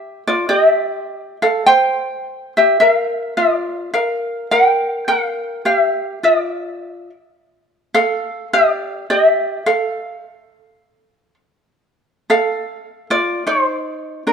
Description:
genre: hawaiian.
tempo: 105 BPM.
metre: 4/4.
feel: swing 59% on 8ths.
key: unclear.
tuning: A4 = 440 Hz.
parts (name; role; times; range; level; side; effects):
ukulele; solo; 0.0-14.3 s; D4 to G5; -15 LUFS; equal; none.
room: light reverb.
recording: close, detailed microphones.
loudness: -14 LUFS.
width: side -6 dB against mid.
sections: 0.0-11.9 A section; 11.9-14.3 B section.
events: none.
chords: 0.5 C; 2.8 Bb; 5.1 Gm7; 7.4 N.C.; 11.9 F7.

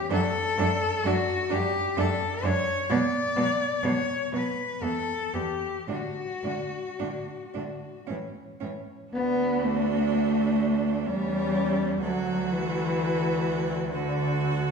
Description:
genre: classical, lyrical piece for cello ensemble.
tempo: 54-66 BPM.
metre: 3/4.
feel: rubato.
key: D major.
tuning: A4 = 440 Hz.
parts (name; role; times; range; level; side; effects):
rich cello; melody; 0.0-14.7 s; F#4 to D5; -30 LUFS; left 4 dB; none.
clear cello; second line; 0.1-14.7 s; B3 to F#4; -32 LUFS; right 5 dB; none.
dark cello; accompaniment; 0.1-14.7 s; D3 to B3; -28 LUFS; equal; none.
rich cello; bass; 0.1-14.7 s; D2 to B2; -33 LUFS; right 1 dB; none.
room: wet recital hall reverb, RT60 1.6 s.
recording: recorded in a church or concert hall.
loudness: -24 LUFS.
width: side -5 dB against mid.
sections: 0.0-9.1 A section; 9.1-14.7 B section.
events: none.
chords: 0.1 D/F# (rootless); 2.9 Bm; 4.8 Em; 5.9 D/A; 8.1 A5; 9.1 D; 11.1 C#dim/E; 12.0 D.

